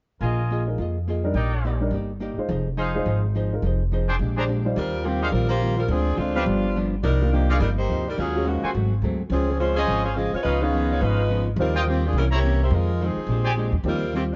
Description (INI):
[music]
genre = jazz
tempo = 211 BPM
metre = 4/4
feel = swing 61% on 8ths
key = Eb major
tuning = A4 = 440 Hz
[part]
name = archtop guitar, miked and amplified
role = accompaniment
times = 0.2-14.3 s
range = F2 to Eb5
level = -32 LUFS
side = equal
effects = none
[part]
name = clear trumpet section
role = stabs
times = 0.2-13.5 s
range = D4 to Bb5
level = -32 LUFS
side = equal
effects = none
[part]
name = upright bass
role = bass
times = 0.2-14.4 s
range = F1 to F2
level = -26 LUFS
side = equal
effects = none
[part]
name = warm baby grand piano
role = accompaniment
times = 0.7-11.7, 13.8-14.0 s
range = Eb3 to C5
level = -31 LUFS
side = equal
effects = none
[part]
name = warm saxophone section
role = melody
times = 4.8-14.4 s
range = Db3 to F5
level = -28 LUFS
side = equal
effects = none
[sound]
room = little or no reverb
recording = dark, warm production, nothing above 7.6 kHz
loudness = -23 LUFS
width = mono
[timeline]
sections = 0.2-4.8 A section; 4.8-13.8 B section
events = none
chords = 0.2 Bb7sus4; 1.3 Ebmaj7/Bb; 2.5 Fm7; 4.2 Bb13; 4.8 Eb69; 5.9 Dm7b5; 6.5 G7; 7.0 Cm11; 8.2 Ebm11; 8.7 Ab7b9; 9.3 Dbmaj7; 10.4 Db9; 11.6 Eb69; 12.1 C7b9; 12.7 Fm7; 13.3 Bb13; 13.8 Eb69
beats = | 0.21 0.49 0.78 1.06 | 1.35 1.63 1.92 2.20 | 2.49 2.77 3.06 3.34 | 3.62 3.91 4.19 4.48 | 4.76 5.05 5.33 5.61 | 5.90 6.18 6.47 6.75 | 7.04 7.32 7.60 7.89 | 8.17 8.46 8.74 9.02 | 9.31 9.59 9.87 10.16 | 10.44 10.73 11.01 11.29 | 11.58 11.86 12.14 12.43 | 12.71 13.00 13.28 13.56 | 13.85 14.13